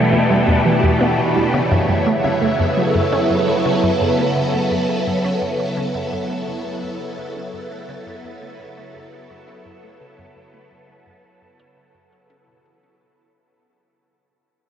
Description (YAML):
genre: ambient, sequencer-driven space music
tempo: 85 BPM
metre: 4/4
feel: straight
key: unclear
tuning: A4 = 440 Hz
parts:
  - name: phased string machine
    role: sustained chords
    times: 0.0-12.8 s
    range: B2 to A4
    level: -18 LUFS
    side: equal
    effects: ensemble chorus, phaser, shimmer reverb
  - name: resonant blip pluck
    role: riff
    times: 0.0-12.8 s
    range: E2 to C#4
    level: -21 LUFS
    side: equal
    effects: phaser, tape echo
room: wet huge ambient reverb, RT60 7.7 s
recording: worn, warbling old tape, cassette tape, warbly pitch drift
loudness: -16 LUFS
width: side -9 dB against mid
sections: 0.0-12.8 A section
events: fade-out on synth arpeggio sound 0.0-12.8; fade-out 0.0-12.8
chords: 0.0 Em; 1.5 F#m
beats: 0.12 0.83 | 1.54 2.24 2.95 3.65 | 4.36 5.07 5.77 6.48 | 7.18 7.89 8.60 9.30 | 10.01 10.71 11.42 12.12